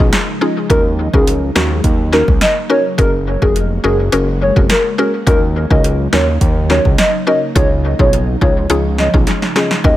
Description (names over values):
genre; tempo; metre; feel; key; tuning
dancehall; 105 BPM; 4/4; straight; Eb minor; A4 = 440 Hz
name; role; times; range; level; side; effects
mallet-like synth pluck; accompaniment; 0.0-10.0 s; Db4 to Bb4; -19 LUFS; left 2 dB; chorus, dub echo
ethereal airy pad; sustained chords; 0.0-10.0 s; Db3 to Gb4; -24 LUFS; equal; ensemble chorus, built-in reverb, sidechain pumping
fat analog bass; bass; 0.0-10.0 s; F1 to Eb2; -16 LUFS; equal; none
deep house drum kit; drums; 0.0-10.0 s; hi-hat, kick drum, snare drum; -15 LUFS; equal; none
hollow clarinet-like synth lead; melody; 0.7-10.0 s; Gb4 to Eb5; -17 LUFS; equal; chorus, dub echo
room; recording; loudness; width
little or no reverb; echo-heavy mix; -11 LUFS; side -14 dB against mid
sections
0.0-9.8 A section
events
drum fill 9.3-9.8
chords
0.0 Dbadd9; 0.7 Ebm7; 3.0 Gbadd9; 5.3 Ebm7; 7.6 Dbadd9